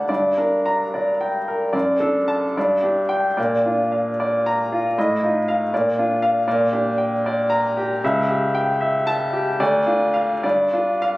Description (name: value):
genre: classical, romantic character piece for solo piano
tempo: 64-82 BPM (dotted quarters)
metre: 6/8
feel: rubato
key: G minor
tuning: A4 = 436 Hz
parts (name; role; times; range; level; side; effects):
- clear baby grand piano; solo; 0.0-11.2 s; C#2 to Bb5; -18 LUFS; equal; none
room: moderate recital hall reverb, RT60 1.5 s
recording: recorded on a phone in the room, club reverb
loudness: -18 LUFS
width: side -19 dB against mid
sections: 0.1-11.2 A section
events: none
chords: 0.1 Gm; 1.7 D/F#; 2.6 G5; 3.4 Bb; 5.0 F7/A; 5.7 Bb; 6.5 Gm/Bb; 8.0 A7/C#; 9.6 Dm; 10.4 G5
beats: | 0.09 0.93 | 1.74 2.56 | 3.37 4.19 | 4.96 5.72 | 6.46 7.23 | 8.02 8.79 | 9.60 10.44